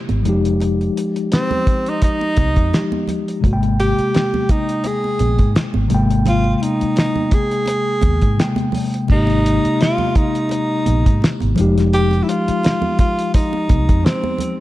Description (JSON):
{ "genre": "lush 1970s-style soul", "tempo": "85 BPM", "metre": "4/4", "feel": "swing 54% on 16ths", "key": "Ab major", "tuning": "A4 = 440 Hz", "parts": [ { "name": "mellow tine electric piano", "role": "accompaniment", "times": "0.0-14.6 s", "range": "C3 to G5", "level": "-20 LUFS", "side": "left 3 dB", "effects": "medium stereo tremolo" }, { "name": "vintage muted fingered electric bass", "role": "bass", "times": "0.1-14.0 s", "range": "F1 to Ab2", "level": "-18 LUFS", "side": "equal", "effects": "none" }, { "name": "cloth-damped thuddy drum kit", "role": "drums", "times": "0.1-14.6 s", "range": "crash cymbal, hi-hat, kick drum, snare drum", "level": "-18 LUFS", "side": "equal", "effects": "none" }, { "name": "congas", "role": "percussion", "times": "0.1-14.6 s", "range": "none", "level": "-27 LUFS", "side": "right 6 dB", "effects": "none" }, { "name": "breathy tenor saxophone", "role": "melody", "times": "1.3-14.6 s", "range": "C4 to Ab4", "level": "-20 LUFS", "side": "right 1 dB", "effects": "none" } ], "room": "studio reverb", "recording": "dark, warm production", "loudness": "-15 LUFS", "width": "side -16 dB against mid", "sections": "0.0-9.1 A section; 9.1-14.6 A section", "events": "none", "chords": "0.3 Fm9; 3.4 Abmaj9; 11.6 Fm9" }